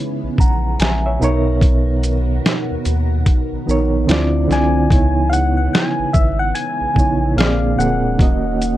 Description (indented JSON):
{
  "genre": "lo-fi hip hop",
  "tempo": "73 BPM",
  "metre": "4/4",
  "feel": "swing 61% on 16ths",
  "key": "C# dorian",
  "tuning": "A4 = 440 Hz",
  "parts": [
    { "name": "overdriven reed electric piano", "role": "accompaniment", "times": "0.0-8.8 s", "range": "A#2 to A#5", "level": "-19 LUFS", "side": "right 2 dB", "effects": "fast tremolo" },
    { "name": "ensemble organ-string", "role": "sustained chords", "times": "0.0-8.8 s", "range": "C#3 to A#4", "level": "-26 LUFS", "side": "equal", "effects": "phaser, ensemble chorus" },
    { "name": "soft dub sub bass", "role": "bass", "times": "0.2-8.8 s", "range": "D1 to D#2", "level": "-19 LUFS", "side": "equal", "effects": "none" },
    { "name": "lo-fi sampler-style drum kit", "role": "drums", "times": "0.4-8.8 s", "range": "hi-hat, kick drum, shaker, snare drum", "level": "-16 LUFS", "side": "equal", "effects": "none" },
    { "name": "soft struck synth lead", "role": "melody", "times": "4.5-8.8 s", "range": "E5 to G#5", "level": "-21 LUFS", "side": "left 2 dB", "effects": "chorus" }
  ],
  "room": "moderate small room reverb, RT60 0.5 s",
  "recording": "dark, warm production",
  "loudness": "-14 LUFS",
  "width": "side -14 dB against mid",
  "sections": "0.0-8.8 A section",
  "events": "none",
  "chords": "0.0 C#m7; 1.2 Bmaj7; 4.1 Dm7; 4.9 C#m7; 7.4 A#7; 8.2 D#m7"
}